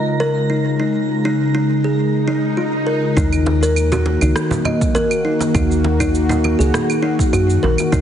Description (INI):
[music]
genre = organic downtempo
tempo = 101 BPM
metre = 4/4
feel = swing 53% on 16ths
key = Eb minor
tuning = A4 = 441 Hz
[part]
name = warm analog pad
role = sustained chords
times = 0.0-8.0 s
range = Db3 to Db5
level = -20 LUFS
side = equal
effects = chorus, sidechain pumping
[part]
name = kalimba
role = arpeggios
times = 0.0-8.0 s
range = Eb4 to Eb5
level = -19 LUFS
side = left 1 dB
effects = digital delay
[part]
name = twinkling granular texture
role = texture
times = 0.0-3.2 s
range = Bb4 to Bb5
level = -31 LUFS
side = right 2 dB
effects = built-in reverb
[part]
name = swell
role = sound effects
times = 2.2-3.2 s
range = none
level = -26 LUFS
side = right 2 dB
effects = none
[part]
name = woody FM bass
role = bass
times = 3.2-8.0 s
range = Bb1 to Gb2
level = -18 LUFS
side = equal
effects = sidechain pumping
[part]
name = electronic kick drum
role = drums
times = 3.2-8.0 s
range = none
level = -20 LUFS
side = equal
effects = overdrive, studio reverb
[part]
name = electronic shaker, claves and rim click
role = drums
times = 3.2-8.0 s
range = none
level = -26 LUFS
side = right 4 dB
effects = overdrive, studio reverb
[part]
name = congas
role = percussion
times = 3.5-7.9 s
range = none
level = -26 LUFS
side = right 3 dB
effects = none
[sound]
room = moderate echo chamber reverb, RT60 1.6 s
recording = heavily compressed radio sound, multiband compression, nothing above 10.7 kHz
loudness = -14 LUFS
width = side -9 dB against mid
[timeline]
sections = 0.0-3.2 A section; 3.2-8.0 B section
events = swell 2.2-3.2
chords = 0.0 Db; 3.2 Ebm7